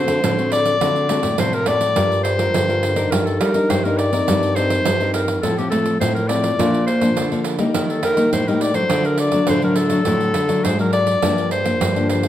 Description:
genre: samba and choro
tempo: 104 BPM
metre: 4/4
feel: straight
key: G minor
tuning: A4 = 439 Hz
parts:
  - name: bright clarinet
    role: melody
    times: 0.0-12.3 s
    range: G4 to D5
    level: -20 LUFS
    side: left 2 dB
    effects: none
  - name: nylon-string guitar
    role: accompaniment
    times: 0.0-12.3 s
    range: G2 to Bb4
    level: -21 LUFS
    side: left 3 dB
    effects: none
  - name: nylon-string guitar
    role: bass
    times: 0.0-12.3 s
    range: G2 to A3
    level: -22 LUFS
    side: right 1 dB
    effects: none
  - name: pandeiro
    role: percussion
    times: 0.1-12.3 s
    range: none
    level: -24 LUFS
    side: right 6 dB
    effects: none
room: moderate large studio reverb, RT60 0.9 s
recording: none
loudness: -16 LUFS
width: side -12 dB against mid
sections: 0.0-2.0 A section; 2.0-12.3 B section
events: none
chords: 0.0 D7; 2.0 Gm7; 3.1 Ebmaj7/G; 4.3 Cm7/G; 5.4 F/A; 6.6 Bb; 7.8 Eb; 8.9 D; 11.2 Gm7

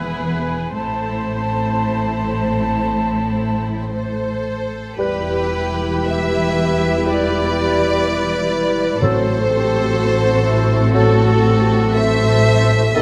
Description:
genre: classical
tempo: 53-62 BPM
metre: 4/4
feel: rubato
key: A minor, E minor from 5.0 s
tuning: A4 = 441 Hz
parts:
  - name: warm studio violin section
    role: melody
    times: 0.0-13.0 s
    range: F#4 to C5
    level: -30 LUFS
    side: equal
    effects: none
  - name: small flute group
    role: second line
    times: 0.0-13.0 s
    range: A4 to A5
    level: -28 LUFS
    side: equal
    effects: none
  - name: warm studio violin section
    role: second line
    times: 0.0-13.0 s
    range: B3 to E5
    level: -26 LUFS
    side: equal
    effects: none
  - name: warm studio viola section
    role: accompaniment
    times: 0.0-13.0 s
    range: B3 to C5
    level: -29 LUFS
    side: equal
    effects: none
  - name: warm studio cello section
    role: bass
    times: 0.0-13.0 s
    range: E2 to B2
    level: -25 LUFS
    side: equal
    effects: none
  - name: warm studio double bass section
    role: bass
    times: 0.0-13.0 s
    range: E1 to B1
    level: -24 LUFS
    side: equal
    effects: none
  - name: dark clarinet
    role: second line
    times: 5.0-13.0 s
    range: A4 to B4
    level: -27 LUFS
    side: equal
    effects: none
  - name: dark bassoon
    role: accompaniment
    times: 5.0-13.0 s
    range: D#3 to G3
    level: -25 LUFS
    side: equal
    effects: none
  - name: mellow trombone section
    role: sustained chords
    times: 5.0-13.0 s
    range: D#3 to E4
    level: -29 LUFS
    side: equal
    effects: none
  - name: warm French horn section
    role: sustained chords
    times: 5.0-13.0 s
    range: E4 to B4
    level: -26 LUFS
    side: equal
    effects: none
  - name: warm trumpet section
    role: stabs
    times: 5.0-13.0 s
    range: A4 to B4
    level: -28 LUFS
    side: equal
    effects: none
  - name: timpani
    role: percussion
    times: 9.0-10.4 s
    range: A2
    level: -26 LUFS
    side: equal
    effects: none
room: moderate scoring stage reverb, RT60 1.6 s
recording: none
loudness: -18 LUFS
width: mono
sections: 0.0-5.0 A section; 5.0-13.0 B section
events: none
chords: 0.0 E; 0.7 Am; 5.0 Em; 9.0 F#dim/A

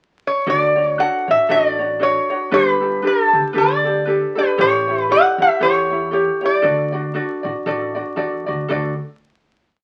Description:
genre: Hawaiian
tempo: 117 BPM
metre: 4/4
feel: swing 58% on 8ths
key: D major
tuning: A4 = 442 Hz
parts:
  - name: lap resonator guitar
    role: melody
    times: 0.3-8.2 s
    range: A4 to F#5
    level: -19 LUFS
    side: equal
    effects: none
  - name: ukulele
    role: accompaniment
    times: 0.5-8.9 s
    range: D4 to D5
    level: -22 LUFS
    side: equal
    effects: none
  - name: upright bass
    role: bass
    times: 0.5-9.0 s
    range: G1 to E2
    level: -32 LUFS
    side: equal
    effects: none
room: moderate studio ambience, RT60 0.5 s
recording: very old 78 rpm record, vinyl crackle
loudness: -18 LUFS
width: mono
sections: 0.0-0.5 pickup bar; 0.5-8.7 A section; 8.7-9.8 final chord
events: none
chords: 0.5 Dmaj7; 2.5 Gadd9; 4.6 A7; 6.6 D

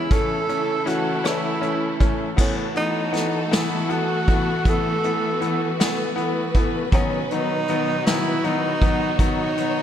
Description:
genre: six-eight pop ballad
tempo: 53 BPM (dotted quarters)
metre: 6/8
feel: straight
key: unclear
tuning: A4 = 440 Hz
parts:
  - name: breathy tenor saxophone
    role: melody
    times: 0.0-9.8 s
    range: C#4 to A4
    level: -25 LUFS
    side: right 1 dB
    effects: tape echo
  - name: warm studio string section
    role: sustained chords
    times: 0.0-9.8 s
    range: B2 to C#5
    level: -27 LUFS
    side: right 1 dB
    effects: none
  - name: clear concert grand piano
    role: accompaniment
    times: 0.1-9.8 s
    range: D#3 to C#4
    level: -25 LUFS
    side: left 3 dB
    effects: none
  - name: vintage brush drum kit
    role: drums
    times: 0.1-9.7 s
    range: crash cymbal, hi-hat, kick drum, rim click, snare drum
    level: -22 LUFS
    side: equal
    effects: none
room: moderate lush hall reverb, RT60 2.7 s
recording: dreamy mix soaked in reverb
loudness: -19 LUFS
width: side -10 dB against mid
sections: 0.0-2.4 A section; 2.4-9.8 B section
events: none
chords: 0.1 A; 2.4 B7sus4; 6.9 B

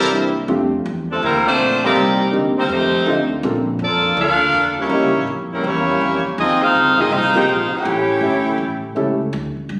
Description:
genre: jazz, big band swing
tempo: 163 BPM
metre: 4/4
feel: swing 66% on 8ths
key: F major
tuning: A4 = 438 Hz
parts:
  - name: bright saxophone section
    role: melody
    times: 0.0-8.8 s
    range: F3 to G5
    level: -19 LUFS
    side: equal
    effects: none
  - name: clear trombone section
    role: second line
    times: 0.0-8.8 s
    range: C3 to A4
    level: -24 LUFS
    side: equal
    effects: none
  - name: upright bass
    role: bass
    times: 0.0-9.8 s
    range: G1 to G2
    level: -28 LUFS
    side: equal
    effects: none
  - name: clear concert grand piano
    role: accompaniment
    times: 0.1-9.2 s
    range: G3 to A4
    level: -22 LUFS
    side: equal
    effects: none
room: moderate large studio reverb, RT60 1.3 s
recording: recorded on a phone in the room, studio reverb, compression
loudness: -18 LUFS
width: mono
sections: 0.5-9.8 A section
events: none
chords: 0.5 F6; 2.0 Cm9; 2.7 F13; 3.4 Bbmaj7; 4.9 Eb7b9; 6.4 Ab6; 7.8 A7

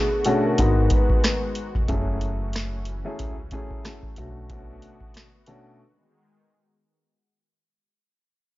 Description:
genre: hip hop, boom-bap hip-hop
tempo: 92 BPM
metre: 4/4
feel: swing 56% on 16ths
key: unclear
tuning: A4 = 440 Hz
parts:
  - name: vibraphone with soft mallets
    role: melody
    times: 0.0-1.4 s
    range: G#4 to B4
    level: -27 LUFS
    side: equal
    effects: high-pass filter, low-pass filter, analog delay
  - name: dark baby grand piano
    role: accompaniment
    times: 0.0-5.8 s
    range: F#2 to G#4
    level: -27 LUFS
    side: left 2 dB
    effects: cassette tape, high-pass filter, low-pass filter
  - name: warm analog pad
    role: sustained chords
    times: 0.0-7.1 s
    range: D3 to F#4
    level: -36 LUFS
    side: left 2 dB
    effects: chorus, high-pass filter, low-pass filter
  - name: booming analog drum machine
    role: drums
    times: 0.2-5.6 s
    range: hi-hat, kick drum, rim click, snare drum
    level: -24 LUFS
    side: equal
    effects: none
  - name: upright bass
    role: bass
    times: 0.6-4.7 s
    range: E#1 to C#2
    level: -28 LUFS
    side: equal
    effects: none
room: studio reverb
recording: dry, gritty hardware recording, nothing above 7.5 kHz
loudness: -20 LUFS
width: side -17 dB against mid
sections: 0.0-7.1 A section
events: fade-out 0.0-7.1; break 5.8-7.1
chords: 0.0 Bm7; 0.6 G#m7; 1.9 F#m7; 4.2 Bm7; 5.8 G#m7

